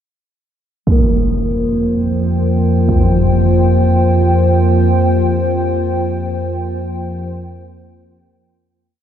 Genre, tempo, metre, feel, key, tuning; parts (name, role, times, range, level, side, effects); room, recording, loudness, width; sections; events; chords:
dark ambient drone; free time; A4 = 440 Hz
dark analog pad; sustained chords; 0.9-9.0 s; F4 to G5; -19 LUFS; equal; chorus
deep rumbling drone; drone; 1.6-9.0 s; F2 to F3; -15 LUFS; equal; built-in reverb
impact; percussion; 0.9-3.1 s; -19 LUFS; equal; low-pass filter on sfx
bronze singing bowl; texture; 0.9-9.0 s; Bb3 to Bb4; -21 LUFS; right 1 dB
wet huge ambient reverb, RT60 7.9 s; dark, warm production; -12 LUFS; side -9 dB against mid
0.9-8.9 A section
fade-out 4.9-8.9
0.9 Fsus2